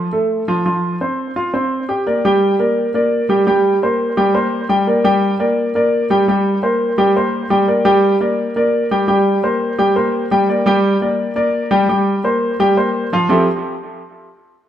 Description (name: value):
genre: jazz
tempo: 171 BPM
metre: 4/4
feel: straight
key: F major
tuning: A4 = 443 Hz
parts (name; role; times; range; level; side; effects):
- warm concert grand piano; solo; 0.0-13.5 s; F3 to G5; -14 LUFS; equal; tape echo
room: wet studio reverb, RT60 0.8 s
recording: heard from further back in the room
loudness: -13 LUFS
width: side -10 dB against mid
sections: 0.0-2.1 A section; 2.1-13.3 B section; 13.3-14.7 C section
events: none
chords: 0.0 Fadd9; 2.1 Gm; 3.5 C5; 4.9 Gm; 6.3 C5; 7.7 Gm; 9.1 C5; 10.5 Gm; 11.9 C5; 13.3 Fmaj9